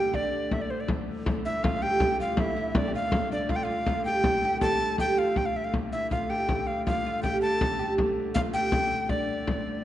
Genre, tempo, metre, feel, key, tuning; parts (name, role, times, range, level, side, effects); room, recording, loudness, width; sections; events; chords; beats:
medieval dance; 107 BPM (dotted quarters); 6/8; straight; D minor; A4 = 439 Hz
breathy alto recorder; melody; 0.0-9.8 s; C5 to A5; -29 LUFS; equal
oud; second line; 0.0-9.8 s; D4 to A4; -30 LUFS; right 2 dB
bright hurdy-gurdy; drone; 0.0-9.8 s; D3 to A3; -35 LUFS; left 2 dB
frame drum; percussion; 0.1-9.6 s; -30 LUFS; left 1 dB
wet scoring stage reverb, RT60 2.0 s; dark, warm production, nothing above 11.0 kHz; -24 LUFS; side -12 dB against mid
0.0-1.3 A section; 1.3-9.8 A section
| 0.14 0.70 | 1.26 1.82 | 2.38 2.94 | 3.50 4.06 | 4.62 5.18 | 5.74 6.30 | 6.86 7.42 | 7.98 8.54 | 9.09 9.65